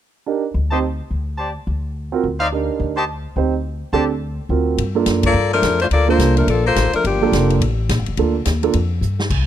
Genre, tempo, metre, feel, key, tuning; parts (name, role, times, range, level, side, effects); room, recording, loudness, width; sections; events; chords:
jazz, big band swing; 212 BPM; 4/4; swing 61% on 8ths; G minor; A4 = 440 Hz
dark concert grand piano; accompaniment; 0.3-8.7 s; Bb3 to C5; -20 LUFS; right 7 dB
upright bass; bass; 0.5-9.5 s; F1 to G2; -20 LUFS; left 1 dB
clear trumpet section; stabs; 0.7-4.0 s; Eb4 to A5; -23 LUFS; left 1 dB
swinging big-band drum kit; drums; 4.8-9.4 s; crash cymbal, hi-hat, kick drum, ride cymbal, snare drum; -25 LUFS; left 1 dB
clear saxophone section; melody; 5.3-7.6 s; F3 to D5; -17 LUFS; left 3 dB
small room reverb; dry, close 1970s-style studio recording; -16 LUFS; side -10 dB against mid
0.3-4.8 A section; 4.8-9.5 B section
band accent 5.2; drum fill 9.0
0.3 Cm9; 0.8 N.C.; 1.4 D7sus4; 2.0 D7alt; 2.5 Cm9; 3.1 Cmadd9/D; 3.7 D7sus4; 4.2 D7alt; 4.8 Gm9